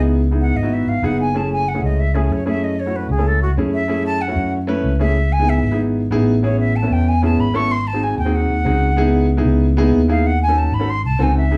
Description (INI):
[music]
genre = jazz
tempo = 189 BPM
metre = 4/4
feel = straight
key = C# minor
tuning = A4 = 439 Hz
[part]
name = warm concert grand piano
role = accompaniment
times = 0.0-11.6 s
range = A3 to B4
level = -22 LUFS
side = equal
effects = none
[part]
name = fingered electric bass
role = bass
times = 0.0-11.6 s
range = F#1 to F#2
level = -20 LUFS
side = equal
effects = none
[part]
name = silver concert flute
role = melody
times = 0.4-11.6 s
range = F#4 to C#6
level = -25 LUFS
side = equal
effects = none
[sound]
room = wet studio ambience, RT60 0.5 s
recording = band playing live in one room, small room ambience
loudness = -18 LUFS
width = mono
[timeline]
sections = 0.0-11.5 A section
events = flute solo 0.0-11.6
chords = 0.0 C#m7; 1.3 F#m7; 5.2 C#m7; 6.4 Amaj7; 7.7 G#7; 9.0 C#m7; 10.2 D#m7b5; 10.9 G#7b9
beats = | 0.08 0.40 0.71 1.03 | 1.35 1.67 1.98 2.30 | 2.62 2.94 3.25 3.57 | 3.89 4.21 4.53 4.84 | 5.16 5.48 5.80 6.12 | 6.43 6.75 7.07 7.39 | 7.71 8.02 8.34 8.66 | 8.98 9.29 9.61 9.93 | 10.25 10.56 10.88 11.20 | 11.52